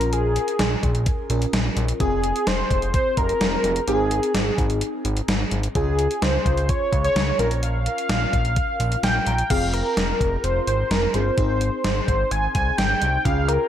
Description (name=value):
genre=synth-pop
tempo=128 BPM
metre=4/4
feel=straight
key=F minor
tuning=A4 = 440 Hz
part: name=octave-doubled lead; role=melody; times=0.0-13.7 s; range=Ab4 to Ab5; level=-23 LUFS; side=equal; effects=chorus, dub echo
part: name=FM electric piano with soft pad layer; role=accompaniment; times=0.0-13.7 s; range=C4 to Bb5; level=-30 LUFS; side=left 1 dB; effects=chorus, phaser
part: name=fat analog bass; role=bass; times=0.0-13.6 s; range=F1 to Db2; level=-24 LUFS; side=equal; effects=none
part: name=gated 80s digital drum machine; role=drums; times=0.0-13.6 s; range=crash cymbal, hi-hat, kick drum, snare drum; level=-24 LUFS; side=equal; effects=gated reverb, gated reverb snare
room=moderate spring reverb, RT60 2.2 s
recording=echo-heavy mix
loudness=-19 LUFS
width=side -10 dB against mid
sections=0.0-9.5 A section; 9.5-13.7 B section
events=FM electric piano fill 8.6-9.5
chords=0.0 Bbm7; 2.0 Fm; 3.9 Ab; 5.8 Db; 7.4 Bbm; 9.5 Fm; 11.4 Ab